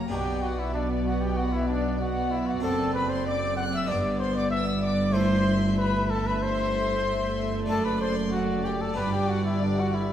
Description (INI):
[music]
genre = classical, baroque-style concerto movement with solo episodes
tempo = 95 BPM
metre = 4/4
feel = straight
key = G major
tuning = A4 = 441 Hz
[part]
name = warm chamber violin section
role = melody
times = 0.0-10.1 s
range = C#5 to E5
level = -38 LUFS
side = left 6 dB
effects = none
[part]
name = warm chamber violin section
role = second line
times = 0.0-10.1 s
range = D5 to F#6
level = -35 LUFS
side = left 2 dB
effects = none
[part]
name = harpsichord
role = accompaniment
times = 0.0-10.1 s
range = F#2 to A4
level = -35 LUFS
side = right 1 dB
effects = none
[part]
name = warm studio viola section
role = accompaniment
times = 0.0-10.1 s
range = G3 to C4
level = -31 LUFS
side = equal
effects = none
[part]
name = warm chamber cello section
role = bass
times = 0.0-10.1 s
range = F#2 to B2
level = -32 LUFS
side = right 2 dB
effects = none
[part]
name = warm studio double bass section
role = bass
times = 0.0-10.1 s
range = F#1 to B1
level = -30 LUFS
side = right 1 dB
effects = none
[part]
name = warm trumpet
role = melody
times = 0.1-10.1 s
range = D4 to F#5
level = -29 LUFS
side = left 1 dB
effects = none
[sound]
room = wet recital hall reverb, RT60 1.6 s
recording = heard from further back in the room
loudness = -24 LUFS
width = side -10 dB against mid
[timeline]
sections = 0.0-10.1 A section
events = none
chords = 0.1 Bm; 2.6 D7/F#; 3.9 G; 5.2 Am7/G; 7.7 D/F#; 9.0 G